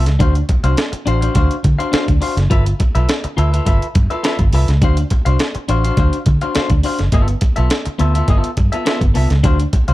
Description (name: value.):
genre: funk.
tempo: 104 BPM.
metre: 4/4.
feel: straight.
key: unclear.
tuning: A4 = 440 Hz.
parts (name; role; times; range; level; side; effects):
clean electric guitar; accompaniment; 0.0-9.9 s; B3 to E#5; -21 LUFS; left 3 dB; none.
vintage muted fingered electric bass; bass; 0.0-9.9 s; F#1 to D3; -15 LUFS; equal; none.
breakbeat sampler-style drum kit; drums; 0.1-9.9 s; hi-hat, kick drum, snare drum; -17 LUFS; equal; none.
room: little or no reverb.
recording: dark, warm production.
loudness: -13 LUFS.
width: side -17 dB against mid.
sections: 0.0-9.9 A section.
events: none.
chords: 0.2 D7#9; 2.5 G13; 4.8 D7#9; 7.1 G13.